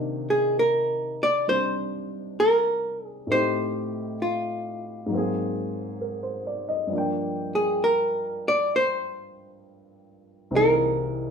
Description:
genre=jazz ballad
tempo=66 BPM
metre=4/4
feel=swing 69% on 8ths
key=C minor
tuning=A4 = 440 Hz
part: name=warm baby grand piano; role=accompaniment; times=0.0-11.3 s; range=C2 to G5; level=-29 LUFS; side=left 1 dB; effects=none
part: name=archtop guitar, miked and amplified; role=melody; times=0.3-11.3 s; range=F4 to D5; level=-22 LUFS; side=equal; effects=none
room=wet studio reverb, RT60 0.7 s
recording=band playing live in one room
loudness=-22 LUFS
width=side -6 dB against mid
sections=0.0-11.3 A section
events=none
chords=0.0 Cm9; 3.3 Am7b5; 5.1 Ab9; 6.9 Gm7; 10.5 C7alt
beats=0.55 1.47 2.38 | 3.29 4.20 5.10 6.01 | 6.91 7.82 8.72 9.62 | 10.53

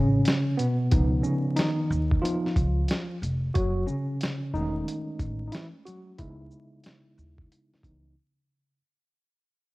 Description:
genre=hip hop, jazz-hop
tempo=91 BPM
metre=4/4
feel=swing 64% on 16ths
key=unclear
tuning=A4 = 440 Hz
part: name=tine electric piano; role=accompaniment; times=0.0-8.8 s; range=B2 to F#4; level=-27 LUFS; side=equal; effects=overdrive, medium stereo tremolo, low-pass filter, cassette tape
part: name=upright bass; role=bass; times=0.0-8.1 s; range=E1 to D#2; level=-28 LUFS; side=equal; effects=none
part: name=dusty soul sampler-style drum kit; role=drums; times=0.3-8.0 s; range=hi-hat, kick drum, shaker, snare drum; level=-27 LUFS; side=equal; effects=cassette tape
room=digital ambience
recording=home recording on cassette, vinyl crackle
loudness=-24 LUFS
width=side -20 dB against mid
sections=0.0-8.8 A section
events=fade-out 0.0-8.8; tine electric piano solo 0.0-8.8; filter sweep on tine electric piano 0.0-8.8; break 8.2-8.8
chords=0.0 F#m (rootless); 0.9 C#9; 3.6 F#m9; 6.2 C#m7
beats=0.25 | 0.91 1.57 2.23 2.89 | 3.55 4.21 4.87 5.53 | 6.19 6.85 7.51 8.17

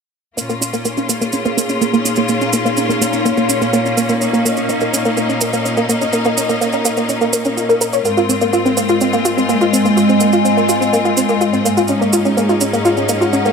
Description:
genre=melodic techno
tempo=125 BPM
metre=4/4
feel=straight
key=Bb minor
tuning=A4 = 439 Hz
part: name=bright studio string section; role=sustained chords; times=0.4-13.5 s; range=Ab2 to F4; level=-18 LUFS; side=left 1 dB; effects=none
part: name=woody wave-folded pluck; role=arpeggios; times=0.4-13.5 s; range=Bb3 to Db5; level=-16 LUFS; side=right 1 dB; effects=ensemble chorus, dub echo
part: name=cabasa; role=percussion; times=0.4-13.5 s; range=none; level=-23 LUFS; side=right 6 dB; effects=none
part: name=warbly tape-like pad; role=texture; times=0.4-13.5 s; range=Ab3 to Ab5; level=-20 LUFS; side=left 1 dB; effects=chorus, built-in reverb
room=moderate lush hall reverb, RT60 2.9 s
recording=none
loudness=-13 LUFS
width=side -5 dB against mid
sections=0.4-13.5 A section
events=filter sweep on synth pluck 0.4-13.5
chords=0.4 Bbm; 8.1 Fm/Ab; 11.9 Absus4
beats=| 0.37 0.85 1.33 1.81 | 2.29 2.77 3.25 3.73 | 4.21 4.69 5.17 5.65 | 6.13 6.61 7.09 7.57 | 8.05 8.53 9.01 9.49 | 9.97 10.45 10.93 11.41 | 11.89 12.37 12.85 13.33

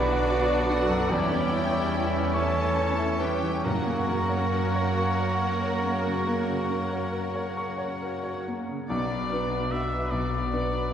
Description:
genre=classical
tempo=44-52 BPM (dotted quarters)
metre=12/8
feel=rubato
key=B minor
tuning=A4 = 442 Hz
part: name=rich studio violin section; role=melody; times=0.0-10.9 s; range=D5 to D6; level=-38 LUFS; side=left 3 dB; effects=none
part: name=warm grand piano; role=melody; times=0.0-10.9 s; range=B1 to C#6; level=-30 LUFS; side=left 1 dB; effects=none
part: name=bright clarinet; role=second line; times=0.0-8.4 s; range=D4 to A4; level=-37 LUFS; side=left 1 dB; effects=none
part: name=bright oboe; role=second line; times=0.0-10.9 s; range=C#5 to E5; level=-34 LUFS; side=left 1 dB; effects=none
part: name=mellow hollow silver concert flute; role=second line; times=0.0-8.4 s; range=F#4 to C#5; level=-36 LUFS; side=right 1 dB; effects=none
part: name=rich studio violin section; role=second line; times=0.0-10.9 s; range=D4 to E5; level=-40 LUFS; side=left 2 dB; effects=none
part: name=clear studio viola section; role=accompaniment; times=0.0-10.9 s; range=A#3 to B4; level=-36 LUFS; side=equal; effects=none
part: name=warm bassoon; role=accompaniment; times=0.0-8.5 s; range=A#3 to C#4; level=-33 LUFS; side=right 3 dB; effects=none
part: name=mellow trombone section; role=sustained chords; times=0.0-8.5 s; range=C#3 to C#4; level=-37 LUFS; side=right 3 dB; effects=none
part: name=warm French horn section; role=sustained chords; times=0.0-10.9 s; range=D3 to F#4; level=-36 LUFS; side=left 1 dB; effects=none
part: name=mellow trumpet section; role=stabs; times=0.0-8.5 s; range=D4 to F#4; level=-36 LUFS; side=equal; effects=none
part: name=clear studio cello section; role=bass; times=0.0-10.9 s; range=B2 to A#4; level=-37 LUFS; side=right 2 dB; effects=none
part: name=warm studio double bass section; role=bass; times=0.0-10.9 s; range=B1 to F#2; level=-33 LUFS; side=right 2 dB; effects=none
part: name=timpani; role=percussion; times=3.7-5.0 s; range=F#2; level=-37 LUFS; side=right 1 dB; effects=none
room=wet church reverb, RT60 2.6 s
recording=recorded in a church or concert hall, nothing above 10.7 kHz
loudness=-24 LUFS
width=side -9 dB against mid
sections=0.0-8.9 A section; 8.9-10.9 B section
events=none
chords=0.0 Bm; 1.1 C#dim/E; 3.7 F#; 8.9 Bm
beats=1.11 2.35 | 3.66 5.00 6.29 7.57 | 8.89 10.11

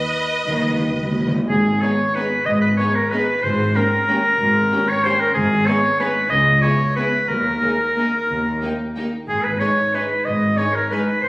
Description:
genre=classical, orchestral ballroom waltz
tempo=167-202 BPM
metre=3/4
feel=rubato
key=G# minor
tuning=A4 = 441 Hz
part: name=rich symphonic violin section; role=melody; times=0.0-11.0 s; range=D#5 to G#5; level=-32 LUFS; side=equal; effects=none
part: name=clear studio violin section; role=second line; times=0.0-11.0 s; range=C#4 to D#5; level=-31 LUFS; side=equal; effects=none
part: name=rich symphonic viola section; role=accompaniment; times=0.0-11.0 s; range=G#3 to B4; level=-29 LUFS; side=equal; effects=none
part: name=rich symphonic cello section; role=bass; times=0.5-11.3 s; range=C#2 to D#3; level=-24 LUFS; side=equal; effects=none
part: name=warm symphonic double bass section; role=bass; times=0.5-11.3 s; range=G#1 to D#2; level=-26 LUFS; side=equal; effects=none
part: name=timpani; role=percussion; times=0.5-7.8 s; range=G#2 to D#3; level=-26 LUFS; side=equal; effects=none
part: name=bright clarinet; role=second line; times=1.5-11.3 s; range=G#4 to D#5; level=-21 LUFS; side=equal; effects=none
part: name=clear oboe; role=second line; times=1.5-11.3 s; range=G#4 to D#5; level=-21 LUFS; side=equal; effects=none
part: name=mellow French horn section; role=sustained chords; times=1.8-11.0 s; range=G#3 to G#4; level=-28 LUFS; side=left 1 dB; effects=none
room=moderate scoring stage reverb, RT60 1.6 s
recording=recorded on a phone in the room, club reverb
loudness=-16 LUFS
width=side -21 dB against mid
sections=0.0-1.5 A section; 1.5-11.3 B section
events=timpani fill 0.5-1.5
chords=0.0 B; 1.5 G#m; 3.4 Gdim/G#; 5.3 G#m; 6.3 C#7(no3); 7.3 D#sus4; 8.3 D#; 9.3 G#m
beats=0.12 | 0.46 0.80 1.16 | 1.49 1.81 2.15 | 2.46 2.78 3.12 | 3.43 3.75 4.08 | 4.40 4.71 5.04 | 5.35 5.67 6.00 | 6.31 6.62 6.96 | 7.28 7.62 7.96 | 8.28 8.61 8.96 | 9.28 9.61 9.95 | 10.26 10.58 10.92 | 11.24

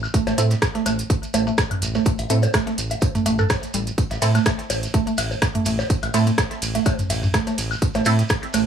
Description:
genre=minimal techno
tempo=125 BPM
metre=4/4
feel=swing 54% on 16ths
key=A minor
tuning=A4 = 442 Hz
part: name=round analog bass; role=bass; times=0.0-8.7 s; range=A1 to A2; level=-22 LUFS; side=right 1 dB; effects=sidechain pumping
part: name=electronic woodblock, bongos and toms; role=percussion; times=0.0-8.6 s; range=none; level=-27 LUFS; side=left 2 dB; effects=overdrive
part: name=shekere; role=percussion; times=0.0-8.6 s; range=none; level=-32 LUFS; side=right 4 dB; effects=none
part: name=mallet-like synth pluck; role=riff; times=0.1-8.6 s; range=G3 to A4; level=-25 LUFS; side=right 4 dB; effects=chorus, sidechain pumping, digital delay
part: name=breakbeat sampler-style drum kit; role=drums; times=0.1-8.7 s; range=hi-hat, snare drum, tambourine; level=-34 LUFS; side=right 1 dB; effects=high-pass filter on perc, high-pass filter on snare, high-pass filter on hats, high-pass filter on room
part: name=electronic kick drum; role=drums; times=0.1-8.4 s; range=none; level=-22 LUFS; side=equal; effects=none
part: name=house drum kit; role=drums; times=0.1-8.6 s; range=hi-hat, ride cymbal, rim click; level=-26 LUFS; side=equal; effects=none
part: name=filtered dub chord stab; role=stabs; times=0.4-8.1 s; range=C4 to A4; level=-26 LUFS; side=right 1 dB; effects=phaser, wide subtle chorus, cassette tape, digital delay
room=moderate small room ambience, RT60 0.5 s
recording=none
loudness=-18 LUFS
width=side -8 dB against mid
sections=0.0-8.7 A section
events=none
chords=none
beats=| 0.14 0.62 1.10 1.58 | 2.06 2.54 3.02 3.50 | 3.98 4.46 4.94 5.42 | 5.90 6.38 6.86 7.34 | 7.82 8.30

